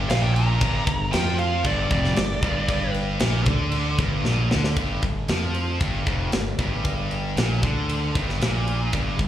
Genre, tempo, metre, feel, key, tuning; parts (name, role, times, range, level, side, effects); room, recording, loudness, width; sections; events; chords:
hard rock; 115 BPM; 4/4; straight; A4 = 440 Hz
tight distorted guitar; riff; 0.0-9.3 s; F2 to F3; -26 LUFS; equal; distortion, slapback echo
fuzz fingered electric bass; bass; 0.0-9.3 s; F1 to F2; -24 LUFS; equal; overdrive
bluesy overdriven lead guitar; melody; 0.1-2.9 s; D5 to Bb5; -28 LUFS; right 1 dB; distortion, slapback echo
tight metal drum kit; drums; 0.1-9.3 s; crash cymbal, kick drum, ride cymbal, snare drum; -26 LUFS; equal
small room ambience; live gig heard through the venue's PA, club reverb; -20 LUFS; side -12 dB against mid
0.0-4.8 A section; 4.8-9.3 B section
lead electric guitar solo 0.0-4.8; drum fill 4.3-4.8
0.0 G5